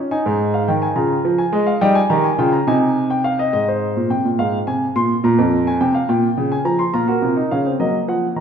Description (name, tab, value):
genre	classical, baroque-style 3-part fugue for grand piano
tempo	70 BPM (dotted quarters)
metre	6/8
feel	straight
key	Ab major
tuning	A4 = 441 Hz
part	warm baby grand piano	solo	0.0-8.4 s	F2 to C6	-15 LUFS	equal	none
room	wet scoring stage reverb, RT60 1.9 s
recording	minimal, uncompressed stereo recording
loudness	-15 LUFS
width	side -7 dB against mid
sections	0.1-3.5 A section; 3.5-8.4 B section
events	none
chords	0.1 Ab5; 1.0 Bbm7/Db; 1.8 Eb; 2.7 Ab/C; 3.5 Ab; 4.4 Fm/Ab; 5.2 Bb5; 6.1 Gdim/Bb; 6.9 Bbm; 7.8 Ebm